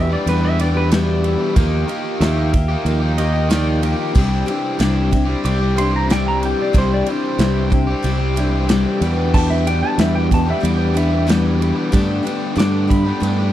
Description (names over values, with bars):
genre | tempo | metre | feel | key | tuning
folk rock and heartland rock | 93 BPM | 4/4 | straight | unclear | A4 = 440 Hz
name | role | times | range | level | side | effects
pedal steel guitar | second line | 0.0-13.5 s | G4 to D6 | -25 LUFS | equal | none
picked twelve-string acoustic guitar | accompaniment | 0.0-13.5 s | G2 to G4 | -21 LUFS | left 4 dB | none
raw garage guitar | riff | 0.0-13.5 s | E2 to G4 | -23 LUFS | equal | overdrive
fingered electric bass | bass | 0.0-13.5 s | C2 to G2 | -18 LUFS | right 1 dB | none
natural country drum kit | drums | 0.3-13.4 s | crash cymbal, kick drum, ride cymbal, snare drum | -20 LUFS | right 1 dB | none
room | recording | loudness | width
little or no reverb | dry, close 1970s-style studio recording | -15 LUFS | side -12 dB against mid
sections
0.0-13.5 A section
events
pedal steel guitar solo 0.0-13.5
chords
0.0 Em7; 1.6 Ebadd9; 4.2 Cadd9; 9.0 Em7; 11.9 Gadd9